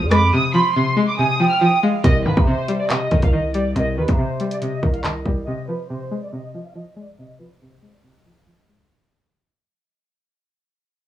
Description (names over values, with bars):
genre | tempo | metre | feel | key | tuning
hip hop, drill | 140 BPM | 4/4 | half-time | unclear | A4 = 440 Hz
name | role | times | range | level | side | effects
rich studio violin section | melody | 0.0-8.6 s | B4 to F6 | -24 LUFS | equal | low-pass filter, plate reverb, analog delay
string-like resonator pluck | accompaniment | 0.0-8.9 s | C3 to Ab3 | -21 LUFS | left 1 dB | chorus, low-pass filter, plate reverb
growling 808-style bass | bass | 0.0-5.5 s | B1 to C3 | -23 LUFS | equal | none
breathy hollow jazz flute | second line | 0.1-2.0 s | F5 to C6 | -21 LUFS | right 4 dB | plate reverb, analog delay
drill drum kit | drums | 0.1-5.4 s | handclaps, hi-hat, kick drum, rim click | -19 LUFS | equal | none
room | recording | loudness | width
moderate studio reverb, RT60 0.5 s | cassette tape, small room ambience | -17 LUFS | side -12 dB against mid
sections
0.0-2.0 A section; 2.0-8.9 B section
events
break 0.3-2.0; fade-out 2.0-8.9; filter sweep 2.0-8.9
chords
0.0 Fm; 2.0 Cm; 5.5 Fm